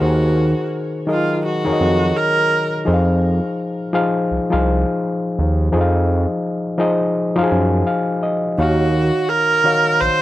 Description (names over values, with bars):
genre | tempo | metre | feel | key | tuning
R&B, neo-soul | 84 BPM | 4/4 | swing 62% on 16ths | unclear | A4 = 440 Hz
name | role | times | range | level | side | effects
warm viola | melody | 0.0-2.7, 8.6-10.2 s | F4 to C5 | -18 LUFS | right 2 dB | none
overdriven reed electric piano | accompaniment | 0.0-10.2 s | Eb3 to Ab5 | -18 LUFS | left 2 dB | none
smooth gliding synth bass | bass | 0.0-10.1 s | Bb1 to Gb2 | -17 LUFS | right 1 dB | none
room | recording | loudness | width
light reverb | none | -15 LUFS | side -15 dB against mid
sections
0.0-10.2 A section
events
reed electric piano fill 7.1-8.6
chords
0.0 Ab9/Eb; 2.9 Fm7; 8.6 Ebm7